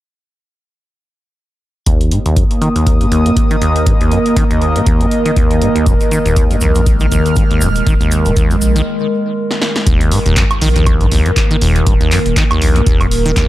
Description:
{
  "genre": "acid house",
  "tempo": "120 BPM",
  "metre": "4/4",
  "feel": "swing 57% on 16ths",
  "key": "unclear",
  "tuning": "A4 = 441 Hz",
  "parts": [
    { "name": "warbly tape-like pad", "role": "sustained chords", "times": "2.6-13.5 s", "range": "Eb3 to Bb4", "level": "-19 LUFS", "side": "equal", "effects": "chorus, built-in reverb, phaser, sidechain pumping" },
    { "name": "acid bass, saw", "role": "riff", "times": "1.9-13.5 s", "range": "Eb2 to Eb3", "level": "-16 LUFS", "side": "equal", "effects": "tape echo" },
    { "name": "electronic kick drum", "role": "drums", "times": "1.9-13.5 s", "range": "none", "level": "-14 LUFS", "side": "equal", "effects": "none" },
    { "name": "punchy analog drum machine", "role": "drums", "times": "1.9-13.5 s", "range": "handclaps, hi-hat, snare drum, woodblock", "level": "-21 LUFS", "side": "right 1 dB", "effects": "analog delay" },
    { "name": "airy breathy pad", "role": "texture", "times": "2.1-13.5 s", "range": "Bb3 to F6", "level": "-19 LUFS", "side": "right 1 dB", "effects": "chorus, sidechain pumping" },
    { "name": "saturated sub bass", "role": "bass", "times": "5.9-13.5 s", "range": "Eb1 to Bb1", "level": "-15 LUFS", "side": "equal", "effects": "sidechain pumping" },
    { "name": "cabasa", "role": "percussion", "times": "5.9-8.8 s", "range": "none", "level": "-27 LUFS", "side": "right 1 dB", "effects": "none" }
  ],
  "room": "light reverb",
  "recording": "echo-heavy mix",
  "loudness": "-10 LUFS",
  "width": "side -15 dB against mid",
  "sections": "1.9-9.9 A section; 9.9-13.5 B section",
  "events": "filter sweep on acid bass 1.9-9.9; break 8.9-9.9; drum fill 9.5-9.9",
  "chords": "1.9 Eb5",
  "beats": "| 1.86 2.37 2.87 3.37 | 3.87 4.37 4.87 5.37 | 5.87 6.37 6.87 7.37 | 7.87 8.37 8.87 9.37 | 9.87 10.37 10.87 11.37 | 11.87 12.37 12.87 13.37"
}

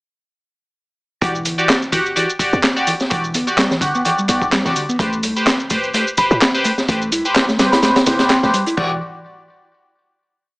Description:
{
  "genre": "breakbeat, breaks",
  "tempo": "127 BPM",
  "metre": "4/4",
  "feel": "swing 56% on 16ths",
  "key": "E minor",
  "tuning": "A4 = 440 Hz",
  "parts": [
    { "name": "picked electric bass", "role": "riff", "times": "1.2-9.0 s", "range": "D3 to E4", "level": "-23 LUFS", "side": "equal", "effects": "tube saturation, digital delay" },
    { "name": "band-passed chord stab", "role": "stabs", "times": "1.2-9.0 s", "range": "F#4 to F#5", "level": "-19 LUFS", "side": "equal", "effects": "phaser, cassette tape, digital delay" },
    { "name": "warm 808-style bass", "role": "bass", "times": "1.2-9.0 s", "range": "E1 to A2", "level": "-23 LUFS", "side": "equal", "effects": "none" },
    { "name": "crunchy breakbeat drum kit", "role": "drums", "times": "1.2-8.9 s", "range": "crash cymbal, hi-hat, kick drum, snare drum", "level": "-18 LUFS", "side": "equal", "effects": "none" },
    { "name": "garage drum kit", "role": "drums", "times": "1.2-8.8 s", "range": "handclaps, hi-hat, shaker", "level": "-21 LUFS", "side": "equal", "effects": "none" },
    { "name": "soft synth bell", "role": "melody", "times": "6.2-7.9 s", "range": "B5", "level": "-20 LUFS", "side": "equal", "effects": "chorus, telephone sound" }
  ],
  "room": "light reverb",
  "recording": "small speaker sound",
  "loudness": "-14 LUFS",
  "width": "side -24 dB against mid",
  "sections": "1.2-8.8 drop; 8.8-10.6 final chord",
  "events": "drop 1.2-8.8",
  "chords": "1.2 Em9; 5.0 Am9; 8.8 Em9",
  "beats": "| 1.22 1.69 2.16 2.63 | 3.11 3.58 4.05 4.52 | 5.00 5.47 5.94 6.41 | 6.89 7.36 7.83 8.30 | 8.78"
}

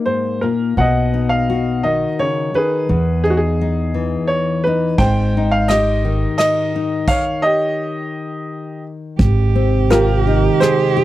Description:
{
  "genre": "acoustic folk-pop ballad",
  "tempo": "85 BPM",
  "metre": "3/4",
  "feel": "straight",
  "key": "Ab major",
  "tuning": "A4 = 440 Hz",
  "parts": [
    { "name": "nylon-string guitar", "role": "accompaniment", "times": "0.0-11.0 s", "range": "E2 to G4", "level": "-20 LUFS", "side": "left 5 dB", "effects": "none" },
    { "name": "bright upright piano", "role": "melody", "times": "0.1-11.0 s", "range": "Gb4 to G5", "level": "-19 LUFS", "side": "right 1 dB", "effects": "none" },
    { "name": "upright bass", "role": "bass", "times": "0.8-10.5 s", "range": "Ab1 to E2", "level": "-17 LUFS", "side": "right 1 dB", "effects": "none" },
    { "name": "soft brush drum kit", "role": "drums", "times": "5.0-10.8 s", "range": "crash cymbal, hi-hat, kick drum, ride cymbal, rim click", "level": "-23 LUFS", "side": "equal", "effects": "none" },
    { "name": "warm cello", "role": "second line", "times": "9.2-11.0 s", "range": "G4", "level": "-19 LUFS", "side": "right 10 dB", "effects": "none" },
    { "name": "dark analog pad", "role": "sustained chords", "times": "9.2-11.0 s", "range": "C3 to Eb5", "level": "-22 LUFS", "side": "right 3 dB", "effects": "chorus" }
  ],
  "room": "little or no reverb",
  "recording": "dry, close 1970s-style studio recording",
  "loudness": "-14 LUFS",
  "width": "side -14 dB against mid",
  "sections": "0.8-9.2 A section; 9.2-11.0 B section",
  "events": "stop 7.1-9.2",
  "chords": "0.0 Eb5; 0.8 B; 2.9 Emaj7; 5.0 Abmaj7; 7.1 Eb7; 9.2 Abmaj7",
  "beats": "0.06 | 0.77 1.48 2.19 | 2.89 3.59 4.29 | 4.99 5.68 6.38 | 7.08 7.78 8.49 | 9.20 9.91 10.61"
}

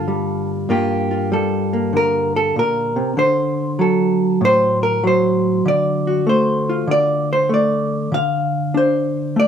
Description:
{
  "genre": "solo jazz",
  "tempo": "97 BPM",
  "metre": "4/4",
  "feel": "swing 67% on 8ths",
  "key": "unclear",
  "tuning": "A4 = 440 Hz",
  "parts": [
    { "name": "hollow-body jazz guitar", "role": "solo", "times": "0.0-9.5 s", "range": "G2 to E#5", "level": "-15 LUFS", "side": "equal", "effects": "none" }
  ],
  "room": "light reverb",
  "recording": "minimal, uncompressed stereo recording",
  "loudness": "-15 LUFS",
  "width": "side -8 dB against mid",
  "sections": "0.0-9.5 A section",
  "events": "hollow-body jazz guitar solo 0.0-9.5",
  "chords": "0.0 Gm7; 3.2 D7#9",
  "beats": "0.07 | 0.69 1.31 1.93 2.54 | 3.16 3.78 4.40 5.02 | 5.64 6.26 6.88 7.49 | 8.11 8.73 9.35"
}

